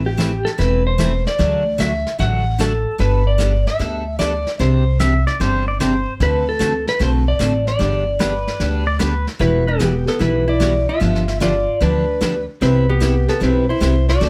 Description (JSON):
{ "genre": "country, western swing", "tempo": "150 BPM", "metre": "4/4", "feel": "swing 67% on 8ths", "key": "G major", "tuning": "A4 = 439 Hz", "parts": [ { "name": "upright bass", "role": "bass", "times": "0.0-14.3 s", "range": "E1 to D2", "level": "-21 LUFS", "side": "equal", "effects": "none" }, { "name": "clean lap steel guitar", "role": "melody", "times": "0.1-14.3 s", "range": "G4 to F#5", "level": "-23 LUFS", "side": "equal", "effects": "plate reverb" }, { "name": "picked steel-string acoustic guitar", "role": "accompaniment", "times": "0.2-14.3 s", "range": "C3 to B4", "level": "-24 LUFS", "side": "equal", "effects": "none" }, { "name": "vintage brush drum kit", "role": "drums", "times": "0.2-14.3 s", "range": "brushed snare drum, hi-hat, kick drum, snare drum", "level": "-28 LUFS", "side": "equal", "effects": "none" }, { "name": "pedal steel guitar", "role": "second line", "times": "5.0-9.3 s", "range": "B4 to E5", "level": "-25 LUFS", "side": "equal", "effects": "none" }, { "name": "hollow-body jazz guitar", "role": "second line", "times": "9.4-14.3 s", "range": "B3 to F#4", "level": "-25 LUFS", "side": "equal", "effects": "none" } ], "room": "light reverb", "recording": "none", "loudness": "-18 LUFS", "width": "mono", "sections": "0.0-14.3 A section", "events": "none", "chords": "0.0 Amadd9; 1.4 D; 3.0 Gadd9; 4.6 Csus2; 6.2 D7; 7.8 G; 9.4 Emadd9; 11.0 G7; 12.6 Cmaj7" }